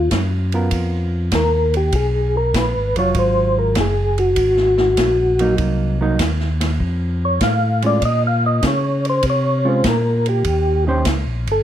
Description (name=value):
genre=soul jazz organ trio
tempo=99 BPM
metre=4/4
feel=swing 69% on 8ths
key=Ab mixolydian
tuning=A4 = 440 Hz
part: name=percussive tonewheel organ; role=melody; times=0.0-11.6 s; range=Gb4 to F5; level=-18 LUFS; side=left 1 dB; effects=slow rotary speaker, chorus vibrato
part: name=tonewheel organ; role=bass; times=0.0-11.6 s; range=F1 to Db3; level=-19 LUFS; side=equal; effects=overdrive, slow rotary speaker
part: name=swinging big-band drum kit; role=drums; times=0.1-11.6 s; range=hi-hat, kick drum, ride cymbal, snare drum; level=-24 LUFS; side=right 1 dB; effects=none
part: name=hollow-body jazz guitar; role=accompaniment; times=0.5-11.1 s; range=Eb3 to C5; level=-22 LUFS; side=right 4 dB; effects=none
room=light reverb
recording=none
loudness=-15 LUFS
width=side -11 dB against mid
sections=0.0-11.6 A section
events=tonewheel organ solo 0.0-11.6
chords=0.0 Db13 (rootless); 3.2 Absus2; 5.6 Cm7b5; 6.8 Faug; 8.0 Bbm; 10.5 Eb13